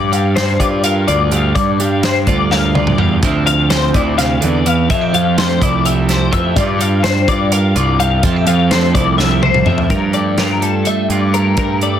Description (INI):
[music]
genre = math rock and midwest emo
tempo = 251 BPM (eighths)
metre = 7/8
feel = straight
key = unclear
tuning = A4 = 440 Hz
[part]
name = twelve-string electric guitar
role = accompaniment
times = 0.0-12.0 s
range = F2 to Bb4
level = -18 LUFS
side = right 8 dB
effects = none
[part]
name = twelve-string electric guitar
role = arpeggios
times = 0.0-12.0 s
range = A4 to F5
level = -17 LUFS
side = left 8 dB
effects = ensemble chorus, slapback echo
[part]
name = fuzz picked electric bass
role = bass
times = 0.0-12.0 s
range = C2 to G2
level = -16 LUFS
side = equal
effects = overdrive
[part]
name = modern studio drum kit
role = drums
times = 0.1-11.9 s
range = hi-hat, kick drum, snare drum, toms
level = -19 LUFS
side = equal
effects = none
[sound]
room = light reverb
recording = dense, heavily limited modern master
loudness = -12 LUFS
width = side -9 dB against mid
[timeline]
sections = 0.0-9.9 A section; 9.9-12.0 B section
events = drum fill 2.5-3.2, 9.2-9.9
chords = 0.0 Gm7; 3.2 Dm9; 4.9 Fmaj9; 6.6 Gm7; 8.2 Fmaj9; 9.9 Gm9